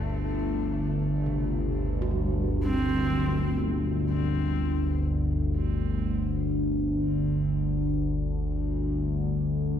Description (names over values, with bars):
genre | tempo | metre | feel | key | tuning
dark ambient drone | free time | none | none | unclear | A4 = 441 Hz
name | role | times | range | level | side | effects
analog drone | drone | 0.0-9.8 s | G1 to D2 | -25 LUFS | equal | chorus, phaser
gamelan-type bronze metallophone | arpeggios | 1.3-8.9 s | C3 to F#4 | -36 LUFS | right 2 dB | ping-pong delay
dark horsehead fiddle | melody | 2.6-3.6 s | C4 | -34 LUFS | right 1 dB | ping-pong delay
room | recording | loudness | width
moderate plate reverb, RT60 3.3 s | dreamy mix soaked in reverb | -25 LUFS | side -9 dB against mid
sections
0.0-9.8 A section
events
fade-out on bronze metallophone 0.0-9.8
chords
0.0 G5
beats
free time